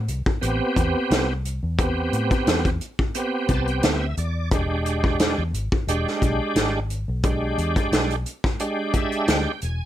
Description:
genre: straight-eighth soul blues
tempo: 88 BPM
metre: 4/4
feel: swing 54% on 16ths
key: A minor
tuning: A4 = 439 Hz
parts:
  - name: vintage muted fingered electric bass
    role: bass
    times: 0.0-9.8 s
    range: E1 to A2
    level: -26 LUFS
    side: left 1 dB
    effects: none
  - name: warm soul drum kit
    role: drums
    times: 0.1-9.8 s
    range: hi-hat, kick drum, snare drum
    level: -22 LUFS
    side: equal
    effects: none
  - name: bright tonewheel organ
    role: accompaniment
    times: 0.4-9.9 s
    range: G#3 to A5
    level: -24 LUFS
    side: right 2 dB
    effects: slow rotary speaker, overdrive, chorus vibrato
room: moderate club reverb, RT60 0.5 s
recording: none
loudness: -20 LUFS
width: side -12 dB against mid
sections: 0.0-9.9 A section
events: tonewheel organ fill 3.1-4.5, 8.6-9.9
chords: 0.0 Am7; 4.5 E7#9

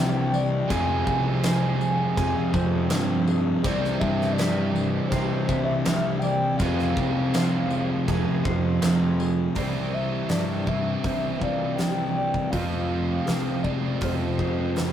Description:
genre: rock, shoegaze and dream pop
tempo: 81 BPM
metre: 4/4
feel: straight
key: C major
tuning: A4 = 440 Hz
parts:
  - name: hollow clarinet-like synth lead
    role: melody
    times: 0.0-14.9 s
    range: C5 to Ab5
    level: -30 LUFS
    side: equal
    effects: chorus, slapback echo
  - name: warbly tape-like pad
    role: sustained chords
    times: 0.5-14.9 s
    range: E3 to C5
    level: -39 LUFS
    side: right 1 dB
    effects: none
  - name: electric guitar through a small old amp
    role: arpeggios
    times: 0.0-14.9 s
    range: F4 to E5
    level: -34 LUFS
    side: equal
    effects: none
  - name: biting overdriven guitar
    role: riff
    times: 0.0-14.9 s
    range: C3 to F4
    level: -29 LUFS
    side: right 4 dB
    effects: none
  - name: cranked stack guitar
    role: riff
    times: 0.0-9.5 s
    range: F2 to C4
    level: -34 LUFS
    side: right 1 dB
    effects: none
  - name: thick fuzz guitar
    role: riff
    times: 0.0-14.9 s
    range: F2 to C4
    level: -29 LUFS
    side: left 5 dB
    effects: distortion
  - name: growling picked electric bass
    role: bass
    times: 0.0-14.9 s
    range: C2 to G2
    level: -29 LUFS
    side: equal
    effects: overdrive
  - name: tambourine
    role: percussion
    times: 0.3-9.4 s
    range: none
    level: -44 LUFS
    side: left 7 dB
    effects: none
  - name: huge arena drum kit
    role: drums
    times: 0.7-14.9 s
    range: crash cymbal, hi-hat, kick drum, snare drum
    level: -28 LUFS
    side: equal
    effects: none
room: moderate studio reverb, RT60 0.5 s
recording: rough rehearsal-room recording, warm saturation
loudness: -22 LUFS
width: side -10 dB against mid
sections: 0.0-9.6 A section; 9.6-14.9 B section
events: none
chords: 0.0 Cadd9; 0.7 Fm; 3.6 Cadd9; 6.6 Fm; 9.6 Cadd9; 12.5 Fm

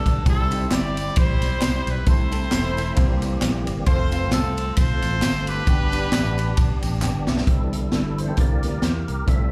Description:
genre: uptempo gospel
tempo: 133 BPM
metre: 4/4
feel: swing 56% on 8ths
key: C major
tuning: A4 = 441 Hz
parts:
  - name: clear horn section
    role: melody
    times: 0.0-7.0 s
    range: C4 to D5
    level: -29 LUFS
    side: equal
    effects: slapback echo
  - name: warm baby grand piano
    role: accompaniment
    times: 0.0-9.5 s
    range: G2 to B5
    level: -34 LUFS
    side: equal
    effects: slapback echo
  - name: tonewheel organ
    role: sustained chords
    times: 0.0-9.5 s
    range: D3 to E5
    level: -33 LUFS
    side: equal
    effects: fast rotary speaker, overdrive, chorus vibrato
  - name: fingered electric bass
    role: bass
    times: 0.0-9.5 s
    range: E1 to E2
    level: -27 LUFS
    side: equal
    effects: none
  - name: swinging big-band drum kit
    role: drums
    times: 0.1-9.4 s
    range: hi-hat, kick drum, ride cymbal, snare drum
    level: -24 LUFS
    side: equal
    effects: none
  - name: tambourine and handclaps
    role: percussion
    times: 0.1-7.4 s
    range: none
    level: -39 LUFS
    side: equal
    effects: none
room: light reverb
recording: live gig heard through the venue's PA, club reverb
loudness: -22 LUFS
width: mono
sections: 0.0-7.5 A section; 7.5-9.5 B section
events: grand piano fill 6.1-7.5; drum fill 7.0-7.5; tonewheel organ solo 7.5-9.5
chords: 0.3 C; 2.1 Am/C; 3.0 C7; 3.9 F; 5.7 G; 7.5 Cmaj7; 8.4 C7

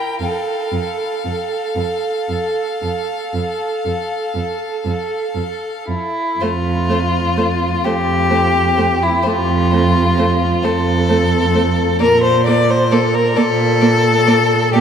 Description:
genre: classical, slow romantic movement for string quartet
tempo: 38-45 BPM (dotted quarters)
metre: 12/8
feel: rubato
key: F major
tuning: A4 = 440 Hz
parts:
  - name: clear violin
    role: melody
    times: 0.0-14.8 s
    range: C5 to G5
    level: -28 LUFS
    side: left 6 dB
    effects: none
  - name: clear violin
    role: second line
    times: 0.0-14.8 s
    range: E4 to D5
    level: -17 LUFS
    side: left 3 dB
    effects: none
  - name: clear viola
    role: accompaniment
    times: 0.0-14.8 s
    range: A3 to Bb4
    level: -22 LUFS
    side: right 3 dB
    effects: none
  - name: rich cello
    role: bass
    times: 0.2-14.8 s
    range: F2 to Bb2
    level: -18 LUFS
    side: right 4 dB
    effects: none
room: wet cathedral reverb, RT60 5.7 s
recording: in a vast, echoing space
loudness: -14 LUFS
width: side -8 dB against mid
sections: 0.0-6.4 A section; 6.4-14.8 A section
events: none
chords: 0.2 F; 12.0 Bbmaj7

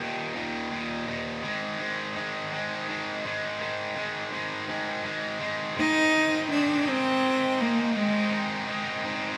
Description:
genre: rock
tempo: 55 BPM (dotted quarters)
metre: 6/8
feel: straight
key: unclear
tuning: A4 = 442 Hz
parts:
  - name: distorted electric guitar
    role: riff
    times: 0.0-9.4 s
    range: Eb2 to Eb4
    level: -31 LUFS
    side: equal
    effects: overdrive
  - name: clear cello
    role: melody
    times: 5.8-8.7 s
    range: Ab3 to Eb4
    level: -26 LUFS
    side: equal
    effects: none
room: wet studio ambience, RT60 0.5 s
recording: band playing live in one room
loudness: -28 LUFS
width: mono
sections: 0.0-5.8 A section; 5.8-9.4 B section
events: build-up 0.0-5.8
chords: 0.0 Eb5; 1.5 Ab5; 5.8 Ab

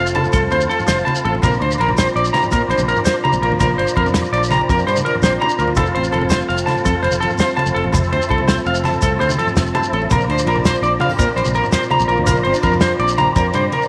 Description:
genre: highlife guitar band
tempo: 110 BPM (dotted quarters)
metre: 12/8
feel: straight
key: unclear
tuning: A4 = 443 Hz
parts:
  - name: fingerpicked steel-string acoustic guitar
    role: accompaniment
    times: 0.0-13.9 s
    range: F2 to A4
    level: -26 LUFS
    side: equal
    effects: none
  - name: tonewheel organ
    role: sustained chords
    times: 0.0-13.9 s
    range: C5 to Bb5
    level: -28 LUFS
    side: equal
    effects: slow rotary speaker, chorus vibrato
  - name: electric guitar at the edge of break-up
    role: arpeggios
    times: 0.0-13.8 s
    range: A4 to Bb5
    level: -20 LUFS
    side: equal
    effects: tape echo
  - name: fingered electric bass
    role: bass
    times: 0.0-13.7 s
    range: F1 to Bb2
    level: -24 LUFS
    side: equal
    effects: none
  - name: warm soul drum kit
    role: drums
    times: 0.1-13.8 s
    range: kick drum, ride cymbal, snare drum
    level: -25 LUFS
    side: equal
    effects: none
  - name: agogo bells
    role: percussion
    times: 0.1-13.7 s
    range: none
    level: -31 LUFS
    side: equal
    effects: none
  - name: shekere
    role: percussion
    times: 0.1-13.9 s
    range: none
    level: -28 LUFS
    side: equal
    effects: none
  - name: congas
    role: percussion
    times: 0.2-13.9 s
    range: none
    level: -28 LUFS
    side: equal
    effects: none
room: moderate echo chamber reverb, RT60 1.6 s, small room ambience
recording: none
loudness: -17 LUFS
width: mono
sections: 0.0-13.9 A section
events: drum fill 13.5-13.9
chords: 0.0 F; 1.4 Bbadd9; 5.8 F; 10.1 Bbadd9

